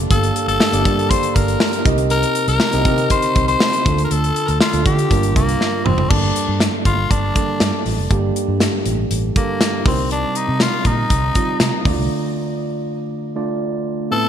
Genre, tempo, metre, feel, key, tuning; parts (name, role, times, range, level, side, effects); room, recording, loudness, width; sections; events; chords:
1980s-style pop; 120 BPM; 4/4; straight; G minor; A4 = 440 Hz
mellow tine electric piano; accompaniment; 0.0-14.3 s; G2 to A5; -21 LUFS; right 2 dB; wide subtle chorus
vintage muted fingered electric bass; bass; 0.0-12.1 s; F1 to D3; -20 LUFS; equal
raspy tenor saxophone; melody; 0.1-14.3 s; Bb3 to C5; -21 LUFS; left 3 dB; ping-pong delay
modern studio drum kit; drums; 0.1-12.0 s; crash cymbal, hi-hat, kick drum, snare drum, tambourine, toms; -19 LUFS; equal; gated reverb
light reverb; bright 1980s-style digital production; -15 LUFS; side -9 dB against mid
0.0-6.1 A section; 6.1-14.1 B section
drum fill 5.6-6.1; break 12.1-14.1
0.0 Gmadd9; 1.9 Cm7; 3.9 Dm; 5.1 Gm7; 6.1 Gmadd9; 9.9 Cm7; 11.9 Dm